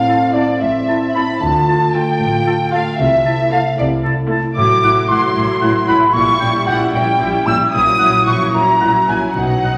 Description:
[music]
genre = cinematic, playful, whimsical film cue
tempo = 76 BPM (dotted quarters)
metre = 6/8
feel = straight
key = A minor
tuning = A4 = 445 Hz
[part]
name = rich studio violin section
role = melody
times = 0.0-9.8 s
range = D5 to E6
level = -28 LUFS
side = equal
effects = none
[part]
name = mellow hollow concert flute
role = second line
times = 0.0-9.8 s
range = D5 to E6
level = -18 LUFS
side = equal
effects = none
[part]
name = rich studio violin section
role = second line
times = 0.0-9.8 s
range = D5 to E6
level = -26 LUFS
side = equal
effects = none
[part]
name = mellow French horn section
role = sustained chords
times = 0.0-9.8 s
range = F#3 to F4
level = -24 LUFS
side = equal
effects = none
[part]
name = concert harp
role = arpeggios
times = 0.0-9.8 s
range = A2 to C#5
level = -25 LUFS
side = equal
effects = none
[part]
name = rich studio double bass section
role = bass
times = 0.0-9.7 s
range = A1 to D2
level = -28 LUFS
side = equal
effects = none
[part]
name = warm studio cello section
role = bass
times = 0.0-9.7 s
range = A2 to D3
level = -28 LUFS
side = equal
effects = none
[part]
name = clear oboe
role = second line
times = 0.1-9.7 s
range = F#5 to A5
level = -28 LUFS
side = equal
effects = none
[part]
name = dark clarinet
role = second line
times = 0.1-9.8 s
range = D#4 to F4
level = -29 LUFS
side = equal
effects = none
[part]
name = rich studio viola section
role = accompaniment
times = 0.3-9.8 s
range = F#3 to F4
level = -26 LUFS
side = equal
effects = none
[sound]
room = wet scoring stage reverb, RT60 1.7 s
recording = vinyl crackle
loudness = -15 LUFS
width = mono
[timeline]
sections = 0.0-9.8 A section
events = none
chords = 0.0 Fmaj7/A; 1.4 Dm; 3.0 Am/C; 4.6 F#m7b5/A; 6.1 A#dim7; 7.7 F#7/A#

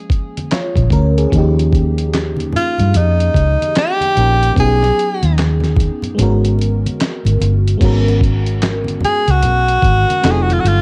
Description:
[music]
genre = R&B, neo-soul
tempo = 74 BPM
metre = 4/4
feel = swing 62% on 16ths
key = G# dorian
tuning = A4 = 438 Hz
[part]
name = FM electric piano with soft pad layer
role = accompaniment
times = 0.0-10.8 s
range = E#3 to C#5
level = -23 LUFS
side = equal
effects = chorus, cassette tape
[part]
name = dusty soul sampler-style drum kit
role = drums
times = 0.1-10.8 s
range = crash cymbal, handclaps, hi-hat, kick drum, snare drum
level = -21 LUFS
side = equal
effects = cassette tape
[part]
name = congas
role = percussion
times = 0.1-10.6 s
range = none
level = -28 LUFS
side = equal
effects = none
[part]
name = vintage muted fingered electric bass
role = bass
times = 0.8-10.8 s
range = F1 to G2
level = -17 LUFS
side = equal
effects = none
[part]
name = edgy tenor saxophone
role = melody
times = 2.6-10.8 s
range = D#4 to G#4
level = -18 LUFS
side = equal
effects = none
[sound]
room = light reverb, digital ambience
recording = home recording on cassette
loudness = -15 LUFS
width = mono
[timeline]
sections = 0.0-7.8 A section; 7.8-10.8 B section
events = kick muted 6.2-7.8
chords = 0.0 A#m7; 1.3 D#9; 4.6 B69; 6.2 G#m11; 10.2 F7b9

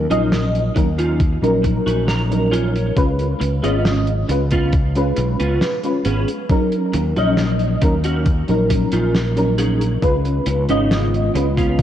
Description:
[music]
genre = vaporwave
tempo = 68 BPM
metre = 4/4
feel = straight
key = Eb minor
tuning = A4 = 440 Hz
[part]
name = mellow FM electric piano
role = accompaniment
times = 0.0-11.5 s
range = Gb3 to Eb5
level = -20 LUFS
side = equal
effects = ensemble chorus, analog delay
[part]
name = fretless electric bass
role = bass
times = 0.0-11.8 s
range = Ab1 to Eb2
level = -20 LUFS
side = equal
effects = none
[part]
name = clean electric guitar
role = riff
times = 0.1-11.8 s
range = Cb4 to Bb5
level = -25 LUFS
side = right 2 dB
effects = ensemble chorus, analog delay
[part]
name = warm soul drum kit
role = drums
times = 0.1-11.8 s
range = hi-hat, snare drum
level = -26 LUFS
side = equal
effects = none
[part]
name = electronic kick drum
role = drums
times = 0.8-11.8 s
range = none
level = -18 LUFS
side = equal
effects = none
[part]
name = warbly tape-like pad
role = sustained chords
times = 10.0-11.8 s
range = Db3 to F4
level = -25 LUFS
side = equal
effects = chorus, built-in reverb
[sound]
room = moderate plate reverb, RT60 2.9 s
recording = dreamy mix soaked in reverb, cassette tape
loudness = -15 LUFS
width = side -10 dB against mid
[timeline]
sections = 0.0-11.8 A section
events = clean electric guitar fill 1.6-3.0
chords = 0.0 Ebm7; 3.0 Db7; 6.5 Ebm7; 10.0 Db7

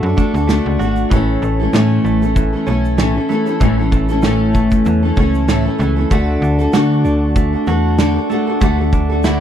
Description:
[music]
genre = acoustic pop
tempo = 96 BPM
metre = 4/4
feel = swing 55% on 16ths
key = A major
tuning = A4 = 437 Hz
[part]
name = fingerpicked steel-string acoustic guitar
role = accompaniment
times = 0.0-9.4 s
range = A2 to A4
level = -16 LUFS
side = left 1 dB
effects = double-tracked left and right
[part]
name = direct-recorded clean electric guitar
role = arpeggios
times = 0.0-9.4 s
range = E3 to F#4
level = -23 LUFS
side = right 6 dB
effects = none
[part]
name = slap-like FM bass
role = bass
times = 0.0-9.4 s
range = G#1 to D3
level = -18 LUFS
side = equal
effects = none
[part]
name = loose indie drum kit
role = drums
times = 0.2-9.4 s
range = kick drum, shaker, snare drum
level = -18 LUFS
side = equal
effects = none
[sound]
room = little or no reverb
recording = none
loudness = -13 LUFS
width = side -9 dB against mid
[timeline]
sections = 0.0-1.1 A section; 1.1-9.4 B section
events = none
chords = 0.0 D; 1.1 A; 6.1 D

